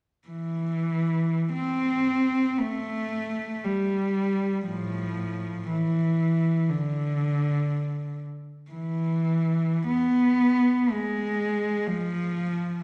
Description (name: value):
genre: classical, free, expressive piece for unaccompanied cello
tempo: free time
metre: none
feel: none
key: A minor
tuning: A4 = 440 Hz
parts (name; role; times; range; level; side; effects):
- warm cello; solo; 0.3-12.8 s; A2 to C4; -26 LUFS; equal; none
room: wet recital hall reverb, RT60 1.4 s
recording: none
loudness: -26 LUFS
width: mono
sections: 0.3-12.8 A section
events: none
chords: none